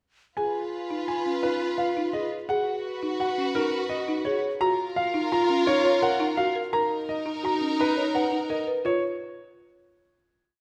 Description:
classical, minimalist pattern music; 170 BPM; 6/4; straight; Db mixolydian; A4 = 440 Hz
warm baby grand piano; melody; 0.4-9.0 s; Bb4 to Bb5; -31 LUFS; equal
wooden-headed alto flute; second line; 0.4-8.6 s; Eb4 to Gb4; -33 LUFS; equal
warm symphonic violin section; sustained chords; 0.4-8.6 s; Eb4 to Cb5; -34 LUFS; equal
folk marimba with soft mallets; arpeggios; 0.4-9.0 s; Db4 to Db5; -31 LUFS; equal
moderate scoring stage reverb, RT60 1.6 s; -26 LUFS; mono
0.4-8.8 A section; 8.8-10.6 final chord
0.4 Db7 (rootless); 2.5 Abm7; 4.6 Gbmaj7; 6.7 Cbmaj7; 8.8 N.C.

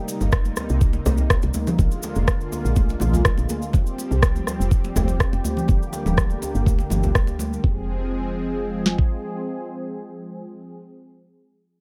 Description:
afro house; 123 BPM; 4/4; straight; F dorian; A4 = 440 Hz
warm analog pad; sustained chords; 0.0-10.8 s; C3 to Ab4; -31 LUFS; equal; chorus, sidechain pumping
cabasa; percussion; 0.1-7.6 s; -40 LUFS; equal
congas; percussion; 0.1-7.5 s; -31 LUFS; equal
woody FM bass; bass; 0.2-9.1 s; D1 to D2; -26 LUFS; equal; sidechain pumping
djembe; percussion; 0.2-7.5 s; -32 LUFS; equal
afro-pop drum kit; drums; 0.3-9.1 s; kick drum, snare drum; -22 LUFS; equal
electronic rim click; drums; 0.3-7.3 s; -25 LUFS; equal
studio ambience; -22 LUFS; mono
0.0-7.6 A section; 7.6-11.5 B section
0.0 Cm7; 1.8 Bb7; 3.7 Fsus2; 5.7 Gm; 7.6 Fm

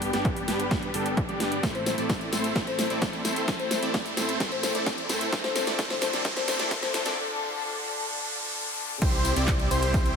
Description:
EDM, festival progressive house; 130 BPM; 4/4; straight; A minor; A4 = 441 Hz
clear studio string section; sustained chords; 0.0-10.2 s; C3 to A4; -35 LUFS; left 4 dB; sidechain pumping
supersaw chords; riff; 0.0-10.1 s; G3 to D5; -30 LUFS; right 1 dB; sidechain pumping, low-pass filter, ping-pong delay
fat analog bass; bass; 0.0-10.1 s; G1 to A2; -35 LUFS; equal; sidechain pumping
big-room dance drum kit; drums; 0.0-10.1 s; crash cymbal, handclaps, hi-hat, ride cymbal, snare drum, tambourine; -31 LUFS; equal
riser and downlifter; sound effects; 0.0-10.2 s; -34 LUFS; equal
electronic kick drum; drums; 0.2-10.0 s; -28 LUFS; equal; overdrive
folk marimba with medium mallets; melody; 1.7-7.1 s; C5; -33 LUFS; left 7 dB; ping-pong delay
wide unison lead; arpeggios; 9.0-10.1 s; C5 to D5; -31 LUFS; equal; sidechain pumping, ping-pong delay
moderate lush hall reverb, RT60 1.9 s; high-pass filter; -24 LUFS; side -6 dB against mid
0.0-9.0 A section; 9.0-10.2 B section
build-up 0.0-9.0; drum fill 0.0-7.2; riser 0.0-9.0; filter sweep on supersaw synth 0.0-9.0; filter sweep 0.0-9.0; break 7.2-9.0; drop 9.0-10.2
0.0 G; 1.6 Am; 5.3 Dm; 9.0 C

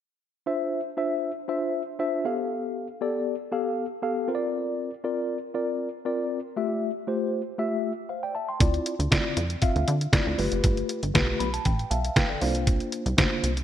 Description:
early-eighties boogie funk; 118 BPM; 4/4; straight; D minor; A4 = 440 Hz
mellow tine electric piano; accompaniment; 0.5-13.5 s; A3 to C6; -27 LUFS; left 2 dB; medium stereo tremolo
plucky analog bass; bass; 8.6-13.6 s; F#1 to D3; -27 LUFS; right 1 dB
detuned 8-bit digital drum machine; drums; 8.6-13.6 s; hi-hat, kick drum, snare drum; -24 LUFS; right 1 dB
moderate lush hall reverb, RT60 1.6 s; bright 1980s-style digital production; -24 LUFS; side -10 dB against mid
0.5-13.6 A section
tine electric piano fill 11.1-12.7
0.5 Dm9; 2.2 G9; 4.3 C9sus4; 6.6 Fmaj9; 8.6 Dm9; 10.4 G9; 12.4 C9sus4

